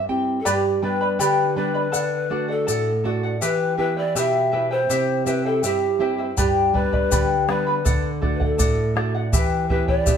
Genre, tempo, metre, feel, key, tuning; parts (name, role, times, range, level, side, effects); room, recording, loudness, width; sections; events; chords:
andean folk, Andean ensemble; 81 BPM; 2/4; straight; A4 = 440 Hz
nylon-string guitar; accompaniment; 0.0-10.2 s; G2 to G5; -25 LUFS; right 2 dB
breathy mellow large pan pipes; melody; 0.4-10.2 s; G4 to E5; -24 LUFS; left 1 dB
charango; accompaniment; 0.5-10.2 s; E4 to B5; -24 LUFS; left 2 dB
tube shaker; percussion; 0.5-10.2 s; -29 LUFS; left 6 dB
bombo; percussion; 6.4-10.2 s; -23 LUFS; equal
wet stone room reverb, RT60 1.0 s; band playing live in one room; -19 LUFS; side -8 dB against mid
0.5-10.2 A section
nylon-string guitar fill 0.0-0.5
0.5 G; 1.9 D; 3.4 Em; 4.9 C; 6.4 G; 7.9 D; 9.3 Em